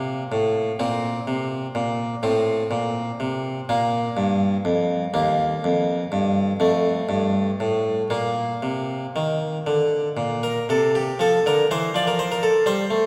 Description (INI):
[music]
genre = classical, baroque-style suite movement for harpsichord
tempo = 76-85 BPM (dotted quarters)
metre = 12/8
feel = rubato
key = unclear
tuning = A4 = 440 Hz
[part]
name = harpsichord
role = solo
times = 0.0-13.1 s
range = Eb2 to D5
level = -22 LUFS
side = equal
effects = none
[sound]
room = wet church reverb, RT60 2.8 s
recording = recorded in a church or concert hall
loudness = -22 LUFS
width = mono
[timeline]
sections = 0.0-11.2 A section; 11.2-13.1 A section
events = none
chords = 0.0 Bbsus2; 3.7 Bb5; 5.1 Eb; 6.6 F; 8.1 Bb; 11.2 F